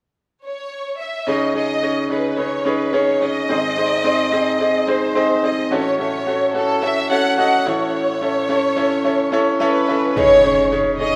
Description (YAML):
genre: pop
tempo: 108 BPM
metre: 4/4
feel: straight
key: C# minor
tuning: A4 = 443 Hz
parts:
  - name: warm studio violin section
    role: melody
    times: 0.4-11.2 s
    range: A4 to F#5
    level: -22 LUFS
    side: equal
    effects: none
  - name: bright upright piano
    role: accompaniment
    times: 1.3-11.2 s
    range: G#1 to E5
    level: -20 LUFS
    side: equal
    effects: none
  - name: impact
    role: sound effects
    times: 10.2-11.2 s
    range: none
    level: -31 LUFS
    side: equal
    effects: none
room: wet lush hall reverb, RT60 2.6 s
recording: rough home demo mix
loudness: -18 LUFS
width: mono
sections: 0.0-1.3 A section; 1.3-10.2 B section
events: impact 10.2-11.2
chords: 0.0 N.C.; 1.3 C#sus2; 3.5 G#; 5.7 F#m/A; 7.7 A; 10.2 C#sus2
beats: 0.15 0.71 | 1.27 1.82 2.38 2.94 | 3.49 4.05 4.61 5.16 | 5.72 6.27 6.83 7.38 | 7.94 8.50 9.05 9.61 | 10.16 10.72